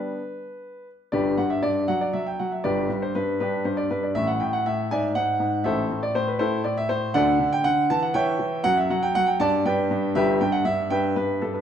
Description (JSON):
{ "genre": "classical-period piano sonatina", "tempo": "80 BPM (dotted quarters)", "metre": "6/8", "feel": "straight", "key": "G major", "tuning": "A4 = 440 Hz", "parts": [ { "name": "bright grand piano", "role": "solo", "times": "0.0-11.6 s", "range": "G1 to A5", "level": "-21 LUFS", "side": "equal", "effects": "none" } ], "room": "wet recital hall reverb, RT60 1.4 s", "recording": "none", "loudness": "-21 LUFS", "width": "side -8 dB against mid", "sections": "0.0-1.1 A section; 1.1-11.6 B section", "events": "none", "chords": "0.0 G (rootless); 1.1 G; 1.9 N.C.; 2.6 G; 4.1 N.C.; 4.9 E7/G#; 5.6 Am; 7.1 D; 7.9 Em69; 8.6 N.C.; 9.4 G; 10.1 Em/G", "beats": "0.34 | 1.12 1.88 | 2.64 3.39 | 4.14 4.89 | 5.64 6.39 | 7.14 7.89 | 8.64 9.39 | 10.14 10.90" }